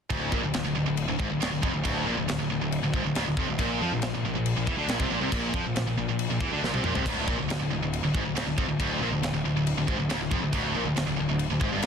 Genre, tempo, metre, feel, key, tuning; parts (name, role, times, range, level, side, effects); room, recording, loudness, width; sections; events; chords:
heavy metal; 138 BPM; 4/4; straight; D minor; A4 = 440 Hz
high-gain distorted guitar; riff; 0.1-11.9 s; D2 to F3; -30 LUFS; left 9 dB; distortion
scooped high-gain guitar; riff; 0.1-11.9 s; D2 to F3; -30 LUFS; right 12 dB; distortion
fuzz picked electric bass; bass; 0.1-11.9 s; D1 to F2; -33 LUFS; equal; overdrive
tight metal drum kit; drums; 0.1-11.9 s; crash cymbal, kick drum, snare drum, toms; -31 LUFS; equal
little or no reverb; dense, heavily limited modern master, lossy compression artefacts; -25 LUFS; side -7 dB against mid
0.1-11.9 A section
drum fill 6.6-7.1
0.1 Dm; 3.6 Bb5; 7.1 Dm